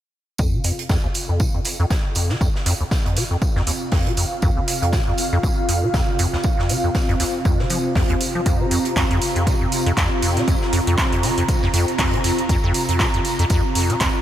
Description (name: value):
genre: acid house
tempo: 119 BPM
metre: 4/4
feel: swing 57% on 16ths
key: unclear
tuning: A4 = 440 Hz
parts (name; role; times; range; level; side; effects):
- warm analog pad; sustained chords; 0.4-14.2 s; C3 to Bb5; -24 LUFS; equal; chorus, sidechain pumping
- acid bass, square; riff; 0.4-14.1 s; Eb2 to F3; -22 LUFS; equal; tube saturation, ensemble chorus, sidechain pumping, tape echo
- electronic kick drum; drums; 0.4-14.1 s; none; -22 LUFS; equal; none
- oversized low-tuned drum kit; drums; 0.4-14.1 s; hi-hat, snare drum, tambourine; -31 LUFS; right 2 dB; high-pass filter on hats, high-pass filter on snare, high-pass filter on perc, high-pass filter on room
- electro analog drum machine; drums; 0.6-14.1 s; handclaps, hi-hat; -25 LUFS; right 2 dB; overdrive
room: moderate huge ambient reverb, RT60 8.1 s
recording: dreamy mix soaked in reverb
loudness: -17 LUFS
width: side -12 dB against mid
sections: 0.4-14.2 A section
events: filter sweep on acid bass 0.4-14.2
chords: 0.4 F5